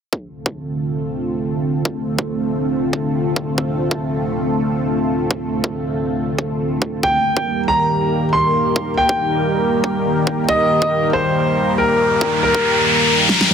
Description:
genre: heavy wobble dubstep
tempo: 139 BPM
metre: 4/4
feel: swing 54% on 16ths, half-time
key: D phrygian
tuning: A4 = 440 Hz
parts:
  - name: lush unison pad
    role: sustained chords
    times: 0.1-13.5 s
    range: D3 to Bb4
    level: -19 LUFS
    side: equal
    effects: chorus, phaser, sidechain pumping
  - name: electronic kick drum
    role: drums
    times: 0.1-13.4 s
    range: none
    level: -22 LUFS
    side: equal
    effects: overdrive, high-pass filter on kick
  - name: dark grand piano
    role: melody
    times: 7.0-13.5 s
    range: Bb4 to C6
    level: -18 LUFS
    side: equal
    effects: dub echo
  - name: riser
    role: sound effects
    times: 11.7-13.5 s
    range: none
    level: -18 LUFS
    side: left 1 dB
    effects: none
  - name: dubstep drum kit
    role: drums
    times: 13.3-13.5 s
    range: snare drum, toms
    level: -15 LUFS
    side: equal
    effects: none
room: light reverb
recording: dense, heavily limited modern master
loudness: -16 LUFS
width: side -7 dB against mid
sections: 0.1-13.5 A section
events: filter sweep on analog synth pad 0.1-13.5; riser 11.7-13.5; drum fill 13.3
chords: 0.1 Dm7; 7.0 Eb

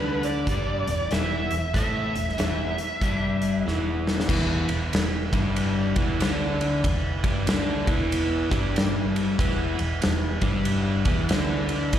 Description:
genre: blues rock power trio and southern rock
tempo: 94 BPM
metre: 4/4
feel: swing 63% on 8ths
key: E mixolydian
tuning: A4 = 435 Hz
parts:
  - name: bluesy overdriven lead guitar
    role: melody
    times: 0.0-3.6 s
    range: B4 to E5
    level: -29 LUFS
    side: right 1 dB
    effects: wah, distortion, slapback echo
  - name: overdriven tonewheel organ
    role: sustained chords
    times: 0.0-12.0 s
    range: B3 to G#5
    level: -36 LUFS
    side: right 4 dB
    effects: slow rotary speaker
  - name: crunchy overdriven guitar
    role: riff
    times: 0.0-12.0 s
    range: E2 to E4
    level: -27 LUFS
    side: left 1 dB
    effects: spring reverb
  - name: vintage muted fingered electric bass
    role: bass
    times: 0.0-12.0 s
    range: E1 to E2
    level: -29 LUFS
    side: equal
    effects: none
  - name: big rock drum kit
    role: drums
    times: 0.2-12.0 s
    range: crash cymbal, hi-hat, kick drum, ride cymbal, snare drum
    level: -27 LUFS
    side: equal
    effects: none
room: light reverb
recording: live gig heard through the venue's PA, recital hall reverb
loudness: -22 LUFS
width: side -10 dB against mid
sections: 0.0-4.3 A section; 4.3-12.0 B section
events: drum fill 3.7-4.3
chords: 0.0 E

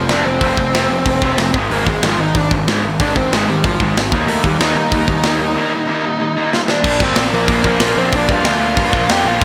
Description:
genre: punk rock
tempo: 187 BPM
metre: 4/4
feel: straight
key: unclear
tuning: A4 = 440 Hz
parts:
  - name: dark smooth lead guitar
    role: melody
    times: 0.0-9.4 s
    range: F3 to G5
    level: -21 LUFS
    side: equal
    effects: overdrive, slapback echo, digital delay
  - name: raw garage guitar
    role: riff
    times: 0.0-9.4 s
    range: F2 to Eb4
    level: -23 LUFS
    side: equal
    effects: overdrive, slapback echo
  - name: tight distorted guitar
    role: riff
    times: 0.0-9.4 s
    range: Ab2 to F4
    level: -24 LUFS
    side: equal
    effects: none
  - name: fuzz picked electric bass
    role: bass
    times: 0.0-9.4 s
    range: F1 to G2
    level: -23 LUFS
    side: equal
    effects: overdrive
  - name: tight metal drum kit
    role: drums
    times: 0.1-9.4 s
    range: crash cymbal, hi-hat, kick drum, snare drum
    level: -21 LUFS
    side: equal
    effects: none
room: moderate lush hall reverb, RT60 1.8 s, small room ambience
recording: big arena sound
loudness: -15 LUFS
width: mono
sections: 0.0-6.8 A section; 6.8-9.4 B section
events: drum fill 6.5-6.8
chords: 0.0 F; 1.6 Ab5; 4.1 Eb; 6.8 Bb

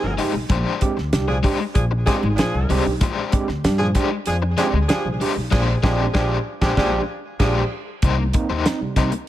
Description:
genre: funk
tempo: 96 BPM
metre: 4/4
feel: straight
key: unclear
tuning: A4 = 439 Hz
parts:
  - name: warm horn section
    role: second line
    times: 0.0-7.6 s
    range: Eb3 to Ab4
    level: -26 LUFS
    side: right 1 dB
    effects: tape echo
  - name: overdriven tine electric piano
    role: stabs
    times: 0.0-9.1 s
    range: Bb2 to G4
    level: -25 LUFS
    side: right 4 dB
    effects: medium tremolo
  - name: upright bass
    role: bass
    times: 0.0-9.1 s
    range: G1 to G2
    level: -22 LUFS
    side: equal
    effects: none
  - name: crunchy overdriven guitar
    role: accompaniment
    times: 0.2-9.2 s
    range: Ab3 to C5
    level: -26 LUFS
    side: left 7 dB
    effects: tremolo
  - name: damped 70s drum kit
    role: drums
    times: 0.2-9.3 s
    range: crash cymbal, hi-hat, kick drum, snare drum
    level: -22 LUFS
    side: equal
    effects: none
room: light reverb, small room ambience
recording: none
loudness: -18 LUFS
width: side -13 dB against mid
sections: 0.0-8.0 A section; 8.0-9.3 B section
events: band accent 5.5-8.0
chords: 0.5 Bb13; 8.0 Cm7

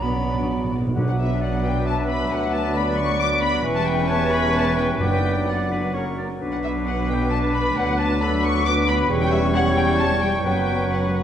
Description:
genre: quick classical-period movement for symphony orchestra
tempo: 133 BPM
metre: 3/4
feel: uneven beats, rubato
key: B minor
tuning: A4 = 439 Hz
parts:
  - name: muted studio violin section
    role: melody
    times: 0.0-11.2 s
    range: D5 to D6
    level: -28 LUFS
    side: left 4 dB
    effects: none
  - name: bright silver concert flute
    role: second line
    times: 0.0-11.2 s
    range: B5 to D6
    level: -32 LUFS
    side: left 2 dB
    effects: none
  - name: mellow clarinet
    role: second line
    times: 0.0-11.2 s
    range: D4 to F#5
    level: -29 LUFS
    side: equal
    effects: none
  - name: muted studio violin section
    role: second line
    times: 0.0-11.2 s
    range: F#4 to D6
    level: -30 LUFS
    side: left 2 dB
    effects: none
  - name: muted studio viola section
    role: accompaniment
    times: 0.0-11.2 s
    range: C#3 to B4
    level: -29 LUFS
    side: right 1 dB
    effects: none
  - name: warm bassoon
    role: accompaniment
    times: 0.0-11.2 s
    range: E3 to G3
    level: -30 LUFS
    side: right 1 dB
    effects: none
  - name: mellow French horn section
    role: sustained chords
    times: 0.0-11.2 s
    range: F#3 to F#4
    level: -28 LUFS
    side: left 4 dB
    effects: none
  - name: muted studio cello section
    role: bass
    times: 0.0-11.2 s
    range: D2 to B3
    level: -28 LUFS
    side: right 2 dB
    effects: none
  - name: muted studio double bass section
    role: bass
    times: 0.0-11.2 s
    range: E1 to D2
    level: -27 LUFS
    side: right 2 dB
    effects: none
  - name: timpani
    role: percussion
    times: 0.0-1.6, 5.0-5.7 s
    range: F#2 to B2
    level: -27 LUFS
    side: right 1 dB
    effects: none
  - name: clear oboe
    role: second line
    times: 1.0-11.2 s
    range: B4 to D5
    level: -31 LUFS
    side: equal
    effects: none
room: moderate concert hall reverb, RT60 2.1 s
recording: nothing above 10.8 kHz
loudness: -19 LUFS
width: side -9 dB against mid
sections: 1.0-11.2 A section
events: timpani fill 0.0-1.0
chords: 0.0 Bm; 2.3 Bm/D; 3.6 C#m7b5/E; 5.0 Bm/F#; 5.9 F#; 6.4 Bm; 7.8 Bm/D; 9.1 C#dim/E; 10.5 F#sus4

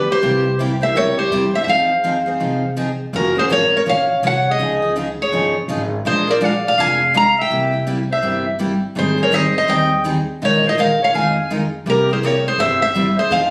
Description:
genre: acoustic string swing (jazz manouche)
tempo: 165 BPM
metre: 4/4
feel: swing 62% on 8ths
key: unclear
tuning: A4 = 440 Hz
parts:
  - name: picked steel-string acoustic guitar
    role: melody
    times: 0.0-13.5 s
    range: Bb4 to Bb5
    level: -20 LUFS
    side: equal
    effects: none
  - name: warm clarinet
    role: second line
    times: 0.0-13.5 s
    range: Gb4 to F5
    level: -23 LUFS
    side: equal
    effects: none
  - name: upright bass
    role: bass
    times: 0.0-13.5 s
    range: F1 to F2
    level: -29 LUFS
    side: equal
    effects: none
  - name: picked steel-string acoustic guitar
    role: accompaniment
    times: 0.2-13.5 s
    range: C3 to Bb4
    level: -24 LUFS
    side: equal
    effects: none
room: moderate studio ambience, RT60 0.5 s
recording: recorded on a phone in the room, studio reverb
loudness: -17 LUFS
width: mono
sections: 0.0-3.1 A section; 3.1-13.5 B section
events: none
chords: 0.2 C7b9; 1.7 Fm7; 3.1 Gbmaj7; 4.6 Dbadd9; 6.1 Bb7; 7.5 C7; 9.0 Abmaj7; 10.4 Bb7sus4; 11.9 C7

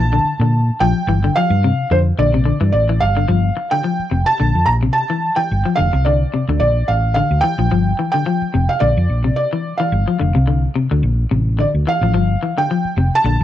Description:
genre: afrobeat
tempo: 108 BPM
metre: 4/4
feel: swing 55% on 16ths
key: G dorian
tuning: A4 = 440 Hz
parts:
  - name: felt-muted upright piano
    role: melody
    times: 0.0-13.4 s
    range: C5 to Bb5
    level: -19 LUFS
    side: right 2 dB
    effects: none
  - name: electric guitar at the edge of break-up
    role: arpeggios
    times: 0.0-13.4 s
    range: C3 to F3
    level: -20 LUFS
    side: left 5 dB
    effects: none
  - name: hollow-body short-scale fingered electric bass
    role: bass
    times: 0.0-13.4 s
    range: F1 to Bb2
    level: -16 LUFS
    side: equal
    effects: none
room: small room ambience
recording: dry, close 1970s-style studio recording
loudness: -14 LUFS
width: side -12 dB against mid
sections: 0.0-3.3 A section; 3.3-13.4 B section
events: none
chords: 0.0 Bbmaj7; 1.1 G7sus4; 2.2 Bbmaj7; 3.3 G7sus4; 4.4 Bbadd9; 5.5 G7sus4; 6.6 Bbmaj7; 7.7 G7sus4; 8.8 Bbadd9; 9.9 G7sus4; 11.0 Bbmaj9; 12.1 G7sus4

